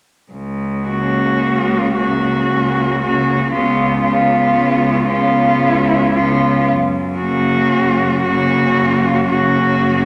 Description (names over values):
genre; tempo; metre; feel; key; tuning
classical, lyrical piece for cello ensemble; 57 BPM; 3/4; uneven beats, rubato; F# major; A4 = 437 Hz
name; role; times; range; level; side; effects
clear cello; bass; 0.3-10.1 s; C#2 to F#2; -24 LUFS; equal; none
rich cello; melody; 0.9-10.1 s; E#4 to F#4; -19 LUFS; equal; none
clear cello; second line; 0.9-10.1 s; A#3 to B3; -22 LUFS; equal; none
rich cello; accompaniment; 0.9-10.1 s; C#3; -21 LUFS; equal; none
room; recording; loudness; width
wet recital hall reverb, RT60 1.6 s; none; -15 LUFS; mono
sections
0.3-10.1 A section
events
none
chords
0.3 F#/C#; 6.7 F#